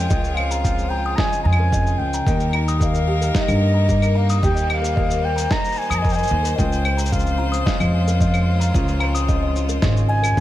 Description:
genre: folktronica.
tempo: 111 BPM.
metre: 4/4.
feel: straight.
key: unclear.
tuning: A4 = 440 Hz.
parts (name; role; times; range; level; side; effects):
wooden flute; melody; 0.0-10.4 s; Eb5 to Bb5; -25 LUFS; equal; ping-pong delay.
music box; second line; 0.0-10.4 s; Bb4 to Eb6; -30 LUFS; left 4 dB; ping-pong delay.
bright string quartet; sustained chords; 0.0-10.4 s; G3 to C5; -31 LUFS; equal; none.
fingerpicked twelve-string acoustic guitar; arpeggios; 0.0-10.4 s; Db3 to G4; -28 LUFS; left 2 dB; ping-pong delay.
upright bass; bass; 0.0-10.4 s; Ab1 to G2; -20 LUFS; equal; none.
electronic cabasa, claves and snare drum; drums; 0.1-10.4 s; none; -27 LUFS; equal; none.
electronic kick drum; drums; 0.1-10.4 s; none; -22 LUFS; equal; none.
room: small room reverb.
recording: none.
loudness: -17 LUFS.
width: side -14 dB against mid.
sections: 0.0-10.4 A section.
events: none.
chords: 0.0 Dbmaj7; 2.3 Eb; 6.6 Dbmaj7.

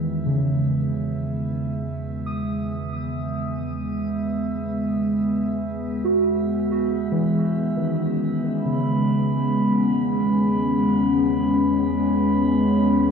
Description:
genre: ambient.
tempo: free time.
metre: none.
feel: none.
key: E major.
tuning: A4 = 440 Hz.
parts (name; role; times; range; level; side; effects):
warbly tape-like pad; sustained chords; 0.0-13.1 s; G#3 to G#4; -22 LUFS; left 1 dB; chorus, built-in reverb, shimmer reverb.
muted felt-like synth keys; arpeggios; 0.0-13.1 s; C#3 to D#6; -26 LUFS; right 1 dB; chorus, phaser, tape echo, shimmer reverb.
round analog bass; bass; 0.0-13.1 s; E2; -35 LUFS; right 4 dB; none.
glass harmonica; texture; 0.0-13.1 s; E5 to B5; -32 LUFS; right 3 dB; shimmer reverb.
room: wet concert hall reverb, RT60 2.0 s.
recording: worn, warbling old tape, cassette tape, warbly pitch drift.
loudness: -20 LUFS.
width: side -6 dB against mid.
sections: 0.0-13.1 A section.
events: fade-in on analog synth bass 0.0-13.1; fade-in on glass harmonica 0.0-13.1.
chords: 0.0 Emaj7.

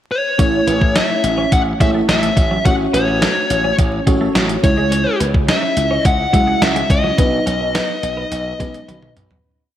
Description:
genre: 1980s-style pop.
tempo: 106 BPM.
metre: 4/4.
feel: straight.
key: unclear.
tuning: A4 = 441 Hz.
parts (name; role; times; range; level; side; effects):
fuzz lead guitar; melody; 0.1-9.1 s; C#5 to F#5; -19 LUFS; left 2 dB; distortion, tape echo.
FM electric piano with soft pad layer; accompaniment; 0.4-9.5 s; F#3 to B5; -20 LUFS; equal; chorus, slapback echo.
twelve-string electric guitar; riff; 0.4-9.4 s; F#3 to D#4; -26 LUFS; right 3 dB; wide subtle chorus, tape echo, slapback echo.
glassy slap bass; bass; 0.4-9.4 s; A1 to C#2; -21 LUFS; equal; none.
clean 12-bit digital drum machine; drums; 0.4-9.4 s; hi-hat, kick drum, snare drum, toms; -17 LUFS; equal; none.
room: moderate lush hall reverb, RT60 2.3 s.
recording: big arena sound, vinyl crackle.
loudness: -13 LUFS.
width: side -11 dB against mid.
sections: 0.0-0.4 pickup bar; 0.4-9.4 verse.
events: fade-out 7.2-9.4; FM electric piano fill 8.6-9.4; drum fill 8.9-9.4.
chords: 0.4 A; 2.7 F#m/A; 4.6 C#m; 7.2 B.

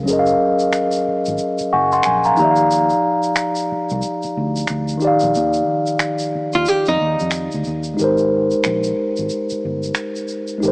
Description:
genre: R&B, neo-soul.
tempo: 91 BPM.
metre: 4/4.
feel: swing 60% on 16ths.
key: Ab major.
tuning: A4 = 440 Hz.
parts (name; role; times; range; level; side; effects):
mellow tine electric piano; accompaniment; 0.0-10.7 s; Eb3 to Db6; -17 LUFS; equal; medium stereo tremolo.
vintage muted fingered electric bass; bass; 0.0-10.7 s; Gb1 to F2; -25 LUFS; equal; none.
tube shaker and finger snaps; percussion; 0.1-10.7 s; none; -25 LUFS; right 1 dB; none.
archtop guitar, miked and amplified; second line; 6.6-7.8 s; Eb4 to G4; -18 LUFS; right 1 dB; none.
room: moderate plate reverb, RT60 3.2 s.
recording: small speaker sound.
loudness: -16 LUFS.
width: side -27 dB against mid.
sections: 0.0-8.0 A section; 8.0-10.7 B section.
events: tine electric piano fill 1.4-2.7.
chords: 0.0 Gbmaj9; 2.4 Ebmaj9; 8.0 Abmaj9.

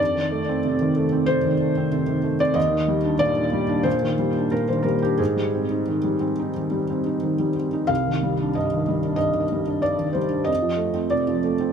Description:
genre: neoclassical minimalist piano.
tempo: 91 BPM.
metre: 4/4.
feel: uneven beats, rubato.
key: unclear.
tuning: A4 = 440 Hz.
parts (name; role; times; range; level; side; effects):
felt-muted upright piano; solo; 0.0-11.7 s; C2 to F5; -20 LUFS; equal; tape echo.
room: light reverb.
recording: none.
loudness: -20 LUFS.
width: side -7 dB against mid.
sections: 0.0-11.7 A section.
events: none.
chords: 0.0 F7; 2.6 Ebmaj7; 5.2 Abmaj7; 7.9 Cmadd9; 10.5 F7.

